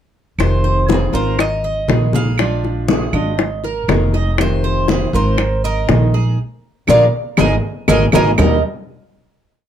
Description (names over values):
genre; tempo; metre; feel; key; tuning
latin, Cuban son and guajira; 120 BPM; 4/4; straight; unclear; A4 = 443 Hz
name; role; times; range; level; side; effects
Cuban tres; melody; 0.4-8.3 s; Bb4 to Ab5; -19 LUFS; equal; plate reverb
nylon-string guitar; accompaniment; 0.4-8.6 s; C3 to Ab4; -22 LUFS; left 2 dB; none
upright bass; bass; 0.4-8.6 s; F1 to Eb2; -18 LUFS; right 1 dB; none
bongos; percussion; 0.4-8.5 s; none; -19 LUFS; left 5 dB; none
claves; percussion; 0.4-8.5 s; none; -24 LUFS; right 10 dB; none
congas; percussion; 0.4-8.5 s; none; -20 LUFS; left 1 dB; none
Cuban tres; arpeggios; 0.6-8.6 s; D4 to Eb5; -23 LUFS; right 6 dB; none
room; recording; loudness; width
moderate studio reverb, RT60 0.6 s; dark, warm production; -13 LUFS; side -10 dB against mid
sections
0.4-8.4 montuno (vamp); 8.4-9.7 final chord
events
band accent 6.4-8.4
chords
0.4 Fm7; 1.4 Absus2; 2.4 Bb7; 3.4 Absus2; 4.4 Fm7; 5.4 Absus2; 6.4 Bb7; 7.4 Absus2; 8.4 Eb